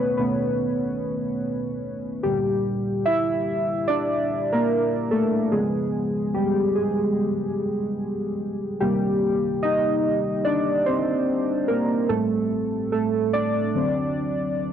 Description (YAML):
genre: hip hop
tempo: 73 BPM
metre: 4/4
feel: swing 58% on 16ths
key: unclear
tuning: A4 = 440 Hz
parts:
  - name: warbly lo-fi synth keys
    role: solo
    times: 0.0-14.7 s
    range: A2 to E5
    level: -21 LUFS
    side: equal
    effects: chorus, low-pass filter
room: digital ambience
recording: dry, gritty hardware recording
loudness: -21 LUFS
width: side -9 dB against mid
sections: 0.0-14.7 A section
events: synth keys solo 0.0-14.7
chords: 0.0 B9; 2.2 Bb6; 5.5 C#7#11; 8.8 Cm9; 12.1 Am7; 13.7 D7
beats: 0.59 1.41 | 2.24 3.06 3.88 4.70 | 5.52 6.34 7.17 7.99 | 8.81 9.63 10.46 11.28 | 12.10 12.92 13.74 14.56